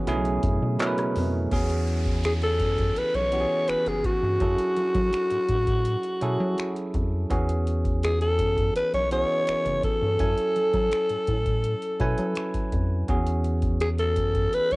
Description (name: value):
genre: contemporary R&B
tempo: 83 BPM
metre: 4/4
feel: straight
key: E major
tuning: A4 = 440 Hz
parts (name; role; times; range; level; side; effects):
- growling alto saxophone; melody; 0.0-14.8 s; F#4 to C#5; -24 LUFS; equal; cassette tape
- bell-like tine electric piano; accompaniment; 0.0-14.8 s; B2 to G#5; -30 LUFS; right 2 dB; cassette tape
- deep dark ambient pad; sustained chords; 0.0-1.5 s; C#3 to G#4; -37 LUFS; right 2 dB; none
- rubbery square bass; bass; 0.0-14.8 s; F#1 to F#3; -27 LUFS; equal; none
- booming analog drum machine; drums; 0.1-14.8 s; finger snaps, handclaps, hi-hat, kick drum, rim click; -28 LUFS; equal; cassette tape
- downlifter; sound effects; 1.5-7.3 s; none; -42 LUFS; equal; none
room: light reverb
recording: home recording on cassette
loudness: -22 LUFS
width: side -22 dB against mid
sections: 0.0-1.5 A section; 1.5-14.8 B section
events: none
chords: 0.1 B13sus4; 1.5 E69; 4.4 F#m7; 7.3 E69; 10.2 F#m7; 13.1 E69